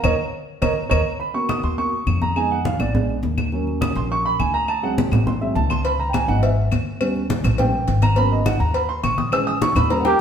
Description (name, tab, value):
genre	Afro-Cuban jazz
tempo	207 BPM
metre	4/4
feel	straight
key	unclear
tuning	A4 = 440 Hz
part	dark upright piano	accompaniment	0.0-10.1 s	E3 to E6	-22 LUFS	right 3 dB	none
part	upright bass	bass	0.0-10.2 s	G#1 to E#2	-23 LUFS	left 1 dB	none
part	claves	percussion	0.0-9.9 s	none	-31 LUFS	left 2 dB	none
part	congas	percussion	0.0-10.2 s	none	-24 LUFS	left 1 dB	none
part	cowbell and bongos	percussion	0.0-1.0, 5.8-10.1 s	none	-27 LUFS	left 3 dB	none
part	breathy trumpet	melody	10.1-10.2 s	G4	-17 LUFS	right 1 dB	none
part	breathy silver concert flute	second line	10.1-10.2 s	A#4	-24 LUFS	left 7 dB	none
room	wet stone room reverb, RT60 1.3 s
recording	band playing live in one room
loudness	-18 LUFS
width	side -8 dB against mid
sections	0.0-1.2 A section; 1.2-10.2 A section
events	upright piano solo 0.0-10.2; drum fill 0.0-1.2, 9.9; band accent 0.0-1.2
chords	0.0 Eb7(no3); 1.2 Bmaj9#11; 2.4 Fm7b5; 2.9 A#7b9; 3.5 D#m7; 4.7 D7#11; 5.8 C#m11; 7.0 D#7b13; 8.2 G#m11; 9.3 A#m7b5